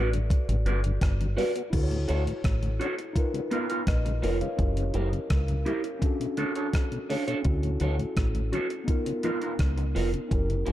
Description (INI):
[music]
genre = lovers rock reggae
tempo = 84 BPM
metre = 4/4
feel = straight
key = unclear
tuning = A4 = 436 Hz
[part]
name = mellow tine electric piano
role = accompaniment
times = 0.0-10.7 s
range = B3 to E#5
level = -33 LUFS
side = left 2 dB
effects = wide subtle chorus, dub echo
[part]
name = mellow tonewheel organ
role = accompaniment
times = 0.0-10.7 s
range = D2 to F#4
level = -36 LUFS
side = left 3 dB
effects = chorus vibrato, slow rotary speaker, dub echo
[part]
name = electric guitar through a small old amp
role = stabs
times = 0.0-10.7 s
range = B3 to D5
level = -32 LUFS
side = right 3 dB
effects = phaser
[part]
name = deep dub fingered electric bass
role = bass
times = 0.0-10.7 s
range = E#1 to D2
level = -27 LUFS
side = equal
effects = none
[part]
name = crisp 8-bit digital drum machine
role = drums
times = 0.1-10.7 s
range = crash cymbal, hi-hat, kick drum, rim click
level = -28 LUFS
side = equal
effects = none
[sound]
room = little or no reverb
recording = dark, warm production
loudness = -25 LUFS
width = side -13 dB against mid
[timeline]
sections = 0.0-1.7 A section; 1.7-10.7 B section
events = none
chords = 0.0 Gmaj7; 1.7 Dmaj7; 3.2 C#13; 4.6 F#7b9; 6.0 Bm9; 7.5 Dmaj7; 8.9 C#13